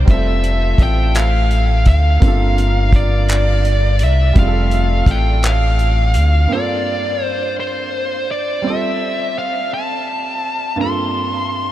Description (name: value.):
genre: slow six-eight R&B.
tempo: 56 BPM (dotted quarters).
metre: 6/8.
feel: straight.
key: F major.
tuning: A4 = 440 Hz.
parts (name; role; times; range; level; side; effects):
dark baby grand piano; accompaniment; 0.0-11.7 s; G2 to A4; -24 LUFS; right 4 dB; none.
round analog bass; bass; 0.0-6.5 s; F1 to D2; -14 LUFS; equal; none.
fuzz lead guitar; melody; 0.1-11.7 s; C5 to C6; -20 LUFS; equal; distortion.
warm horn section; stabs; 0.1-6.1 s; A3 to Bb4; -28 LUFS; left 2 dB; tape echo.
cloth-damped thuddy drum kit; drums; 0.1-6.3 s; handclaps, hi-hat, kick drum; -16 LUFS; equal; none.
room: light reverb, studio ambience.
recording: none.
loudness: -14 LUFS.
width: side -13 dB against mid.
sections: 0.0-6.5 A section; 6.5-11.7 A section.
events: none.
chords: 0.1 Fmaj7; 2.2 Gm11; 4.4 F; 6.5 Gm11; 8.6 Fmaj7; 10.8 Gm11.